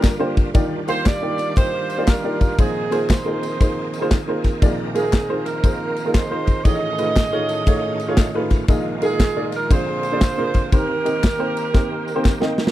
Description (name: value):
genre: uptempo gospel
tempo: 118 BPM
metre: 4/4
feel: swing 64% on 8ths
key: Eb major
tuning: A4 = 444 Hz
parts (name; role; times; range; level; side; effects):
- warm saxophone section; melody; 0.0-12.6 s; C4 to Eb5; -24 LUFS; right 3 dB; none
- warm upright piano; accompaniment; 0.0-12.7 s; G1 to A5; -24 LUFS; equal; none
- bright tonewheel organ; sustained chords; 0.0-12.7 s; A2 to Bb4; -29 LUFS; right 3 dB; fast rotary speaker, overdrive, chorus vibrato
- modern studio drum kit; drums; 0.0-12.7 s; kick drum, ride cymbal, snare drum; -17 LUFS; equal; none
- handclaps and tambourine; percussion; 0.0-12.7 s; none; -36 LUFS; left 8 dB; none
room: little or no reverb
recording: dry, close 1970s-style studio recording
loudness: -17 LUFS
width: side -14 dB against mid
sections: 0.0-12.7 A section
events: upright piano fill 7.2-8.7; drum fill 11.7-12.7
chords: 0.0 Gm7; 0.5 Ebmaj9; 2.6 Bb9sus4; 6.7 F7alt/A; 8.7 Bb7sus4; 9.7 Bb9; 10.7 Eb6